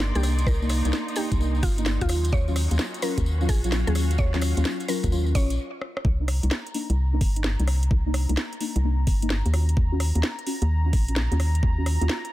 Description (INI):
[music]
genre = UK garage, two-step garage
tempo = 129 BPM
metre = 4/4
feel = swing 66% on 16ths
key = unclear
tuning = A4 = 440 Hz
[part]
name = warm analog pad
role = sustained chords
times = 0.0-12.3 s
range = Bb5 to C6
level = -39 LUFS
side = equal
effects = chorus, sidechain pumping
[part]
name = deep mellow chord stab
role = stabs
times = 0.0-12.2 s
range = Gb3 to Gb4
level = -31 LUFS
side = left 1 dB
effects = chorus, dub echo
[part]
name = organ-like FM bass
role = bass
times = 0.0-12.1 s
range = G1 to Eb2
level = -23 LUFS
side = equal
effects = sidechain pumping
[part]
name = garage drum kit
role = drums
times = 0.0-12.3 s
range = hi-hat, rim click, snare drum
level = -31 LUFS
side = equal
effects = none
[part]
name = tambourine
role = percussion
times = 0.0-5.6 s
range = none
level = -39 LUFS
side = left 2 dB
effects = none
[part]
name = clear studio string section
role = texture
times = 0.0-5.6 s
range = Bb3 to F5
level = -38 LUFS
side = equal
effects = sidechain pumping
[part]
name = mallet-like synth pluck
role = melody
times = 0.2-5.6 s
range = F4 to Db5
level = -34 LUFS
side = left 1 dB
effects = chorus, dub echo
[part]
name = electronic kick drum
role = drums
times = 0.5-11.8 s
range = none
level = -24 LUFS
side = equal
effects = none
[sound]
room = little or no reverb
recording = dense, heavily limited modern master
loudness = -21 LUFS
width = side -15 dB against mid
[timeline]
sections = 0.0-6.0 A section; 6.0-12.3 A section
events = break 5.6-6.0; drum fill 5.8; filter sweep on synth stab 6.0-12.3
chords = 0.0 Cm9; 2.1 Ebm9; 6.0 Cm9; 9.5 Ebm9